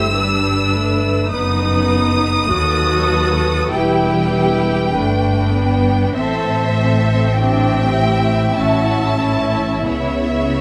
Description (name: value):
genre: classical, slow romantic movement for string orchestra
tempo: 46-52 BPM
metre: 4/4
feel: rubato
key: unclear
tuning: A4 = 439 Hz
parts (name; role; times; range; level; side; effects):
- rich chamber violin section; melody; 0.0-10.6 s; E5 to E6; -23 LUFS; equal; none
- rich studio violin section; second line; 0.0-10.6 s; E4 to E5; -25 LUFS; equal; none
- rich chamber viola section; accompaniment; 0.0-10.6 s; F#3 to F#4; -22 LUFS; equal; none
- rich chamber double bass section; bass; 0.0-10.6 s; E1 to D#2; -23 LUFS; equal; none
- warm chamber cello section; bass; 0.0-10.6 s; D#2 to C#3; -24 LUFS; equal; none
room: light reverb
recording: close, detailed microphones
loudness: -16 LUFS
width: mono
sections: 0.0-10.6 A section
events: none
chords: 0.0 G; 1.3 B7/F#; 3.7 Em; 6.2 Am7; 8.6 A